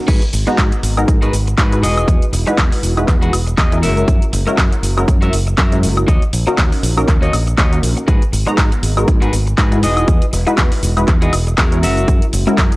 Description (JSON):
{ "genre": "filtered disco house", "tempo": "120 BPM", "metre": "4/4", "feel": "swing 56% on 16ths", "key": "G# minor", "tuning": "A4 = 437 Hz", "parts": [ { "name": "funky polysynth comp", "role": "accompaniment", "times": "0.0-12.8 s", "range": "G#3 to A#5", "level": "-20 LUFS", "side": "equal", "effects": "chorus, phaser, sidechain pumping, low-pass filter" }, { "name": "electric guitar at the edge of break-up", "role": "riff", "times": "0.1-12.8 s", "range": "F#4 to F#5", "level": "-22 LUFS", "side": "left 1 dB", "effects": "sidechain pumping, low-pass filter" }, { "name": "modern bright fingered electric bass", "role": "bass", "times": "0.1-12.7 s", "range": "E1 to G#2", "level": "-17 LUFS", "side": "equal", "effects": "sidechain pumping, low-pass filter" }, { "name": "electronic kick drum", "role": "drums", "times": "0.1-12.7 s", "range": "none", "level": "-14 LUFS", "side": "equal", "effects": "overdrive" }, { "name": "house drum kit", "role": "drums", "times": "0.1-12.8 s", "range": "crash cymbal, handclaps, hi-hat, shaker, woodblock", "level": "-21 LUFS", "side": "equal", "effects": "overdrive, sidechain pumping on hats, sidechain pumping on perc, sidechain pumping on cymbals" } ], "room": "digital ambience", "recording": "dry, gritty hardware recording, cassette tape", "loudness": "-12 LUFS", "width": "side -20 dB against mid", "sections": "0.1-12.8 A section", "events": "none", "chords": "0.1 G#m7; 1.8 Emaj9; 3.8 F#7; 6.1 D#m7; 8.1 G#m7; 9.8 Emaj9; 11.8 F#7" }